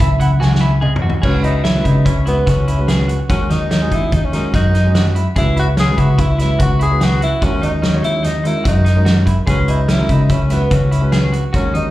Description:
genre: progressive instrumental, band music in an uneven meter.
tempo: 146 BPM.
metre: 5/4.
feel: straight.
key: C# dorian.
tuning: A4 = 439 Hz.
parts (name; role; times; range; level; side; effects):
dark grand piano; accompaniment; 0.0-11.9 s; E3 to G#5; -23 LUFS; right 2 dB; plate reverb, slapback echo.
clean electric guitar; arpeggios; 0.0-11.8 s; C#4 to G#4; -25 LUFS; right 1 dB; plate reverb, slapback echo.
hollow-body short-scale picked electric bass; bass; 0.0-11.9 s; C#2 to C#3; -15 LUFS; equal; none.
loose indie drum kit; drums; 0.0-11.8 s; crash cymbal, hi-hat, kick drum, snare drum, toms; -18 LUFS; equal; none.
warm tenor saxophone; melody; 1.2-11.9 s; B3 to G#4; -21 LUFS; left 1 dB; plate reverb, slapback echo.
room: light reverb.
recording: live gig heard through the venue's PA, club reverb.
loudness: -12 LUFS.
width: side -15 dB against mid.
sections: 0.0-1.2 A section; 1.2-11.9 B section.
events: grand piano solo 0.0-1.2; drum fill 0.4-1.2.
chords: 0.0 C#m11; 1.2 C#m7; 3.3 D#m7; 5.4 C#m7; 7.4 D#m7; 9.5 C#m7.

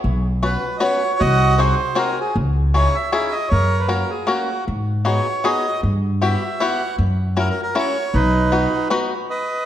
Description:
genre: musette waltz.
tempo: 156 BPM.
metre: 3/4.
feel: swing 54% on 8ths.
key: B major.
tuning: A4 = 444 Hz.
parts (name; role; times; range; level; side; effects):
upright bass; bass; 0.0-8.6 s; B1 to G#2; -19 LUFS; equal; none.
bandoneon; melody; 0.4-9.7 s; D#4 to F#5; -21 LUFS; right 2 dB; none.
bluegrass banjo; accompaniment; 0.4-9.1 s; A#3 to B4; -23 LUFS; left 3 dB; none.
room: moderate scoring stage reverb, RT60 1.6 s.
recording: none.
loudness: -17 LUFS.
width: side -11 dB against mid.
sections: 0.1-9.3 A section.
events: none.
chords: 0.1 Bsus2; 1.2 G#7/B#; 2.4 C#madd9; 3.5 F#; 4.7 G#m7; 5.8 Emadd9/G; 7.0 F#7; 8.1 B.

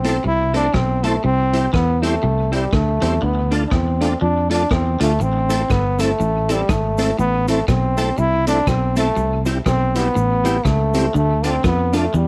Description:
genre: ska.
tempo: 121 BPM.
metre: 4/4.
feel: swing 59% on 8ths.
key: A minor.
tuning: A4 = 440 Hz.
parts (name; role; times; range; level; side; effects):
bright trombone; melody; 0.0-12.3 s; G3 to E4; -23 LUFS; equal; none.
clean electric guitar; accompaniment; 0.0-12.1 s; G3 to A4; -28 LUFS; equal; none.
tonewheel organ; stabs; 0.0-12.1 s; C4 to C5; -28 LUFS; equal; chorus vibrato, slow rotary speaker.
fingered electric bass; bass; 0.0-12.3 s; G1 to F2; -22 LUFS; equal; none.
vintage drum kit; drums; 0.0-12.0 s; hi-hat, kick drum, rim click; -27 LUFS; equal; tape echo.
twangy electric guitar; riff; 0.2-12.3 s; G2 to F3; -30 LUFS; equal; none.
cabasa; percussion; 5.2-12.3 s; none; -44 LUFS; equal; none.
room: small room ambience.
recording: none.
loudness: -18 LUFS.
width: mono.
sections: 0.0-12.3 A section.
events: none.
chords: 0.0 Am; 1.2 C; 3.2 Dm; 5.2 Am; 9.2 C; 11.1 Dm.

